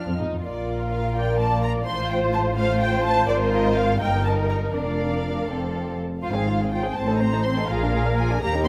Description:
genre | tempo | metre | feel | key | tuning
quick classical-period movement for string orchestra | 82 BPM (dotted quarters) | 6/8 | rubato | Bb major | A4 = 438 Hz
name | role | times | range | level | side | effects
muted studio violin section | melody | 0.0-8.7 s | D5 to F6 | -30 LUFS | equal | none
muted studio violin section | second line | 0.0-8.7 s | Bb3 to C5 | -28 LUFS | equal | none
muted studio viola section | accompaniment | 0.0-8.7 s | F4 to D5 | -32 LUFS | equal | none
muted studio cello section | bass | 0.0-8.7 s | Eb2 to F3 | -32 LUFS | equal | none
muted studio double bass section | bass | 0.1-8.7 s | F1 to F2 | -28 LUFS | equal | none
room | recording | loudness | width
light reverb | close, detailed microphones | -23 LUFS | mono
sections
0.4-8.7 A section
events
none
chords
0.4 Bb; 1.9 F/A; 3.3 Bb5/Ab; 4.0 Eb/G; 4.7 Bb/F; 6.2 Fm/Ab; 7.0 Adim; 7.7 Bb7

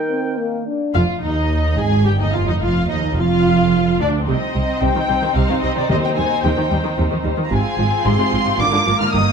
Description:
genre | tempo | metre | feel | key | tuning
quick classical-period movement for symphony orchestra | 110 BPM | 3/4 | rubato | C minor | A4 = 440 Hz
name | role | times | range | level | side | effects
clear oboe | second line | 0.0-0.7 s | G5 | -30 LUFS | right 3 dB | none
mellow hollow silver concert flute | second line | 0.0-0.6 s | Bb4 | -28 LUFS | left 4 dB | none
mellow bassoon | accompaniment | 0.0-0.6 s | Eb3 | -27 LUFS | equal | none
mellow French horn section | sustained chords | 0.1-0.9 s | Bb3 to D4 | -24 LUFS | left 2 dB | none
muted symphonic violin section | melody | 0.9-9.3 s | D5 to F6 | -22 LUFS | left 3 dB | none
muted studio violin section | second line | 0.9-9.3 s | D4 to C5 | -24 LUFS | equal | none
muted studio viola section | accompaniment | 0.9-9.3 s | C3 to Ab4 | -22 LUFS | equal | none
muted chamber double bass section | bass | 0.9-9.2 s | F1 to Eb2 | -21 LUFS | right 2 dB | none
muted studio cello section | bass | 0.9-9.2 s | D2 to Eb3 | -22 LUFS | right 3 dB | none
timpani | percussion | 5.9-6.7 s | Eb3 | -24 LUFS | left 2 dB | none
room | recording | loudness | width
moderate recital hall reverb, RT60 1.5 s | none | -15 LUFS | side -6 dB against mid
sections
0.9-9.3 A section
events
none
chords
0.0 Eb; 0.9 Fm9; 2.6 Dm/F; 4.3 Cm; 5.9 Cm/Eb; 7.5 Fm/Ab; 8.6 Bb7/Ab

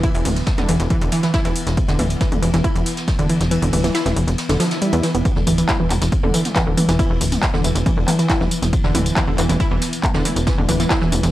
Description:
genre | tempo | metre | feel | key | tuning
driving peak-time techno | 138 BPM | 4/4 | straight | unclear | A4 = 440 Hz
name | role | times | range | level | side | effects
wide unison pluck | riff | 0.0-11.1 s | D3 to E4 | -21 LUFS | equal | sidechain pumping, analog delay
tight sequencer bass | bass | 0.0-11.3 s | D1 to E2 | -20 LUFS | equal | sidechain pumping
deep dark ambient pad | drone | 0.0-11.3 s | E3 to B3 | -28 LUFS | left 1 dB | none
electronic kick drum | drums | 0.0-11.0 s | none | -20 LUFS | equal | none
jazz brush drum kit | drums | 0.0-11.3 s | hi-hat, ride cymbal, snare drum | -32 LUFS | equal | sidechain pumping on cymbals, high-pass filter on cymbals, sidechain pumping on hats, high-pass filter on hats, high-pass filter on snare, high-pass filter on room
techno drum kit | drums | 0.0-11.3 s | handclaps, hi-hat, tambourine, toms | -24 LUFS | equal | none
swell | sound effects | 4.6-5.3 s | none | -27 LUFS | left 2 dB | none
room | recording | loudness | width
light reverb | none | -16 LUFS | side -15 dB against mid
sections
0.0-5.3 A section; 5.3-11.3 B section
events
kick drops out 3.5-5.3; swell 4.6-5.3; drop 5.3-11.3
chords
0.0 E5

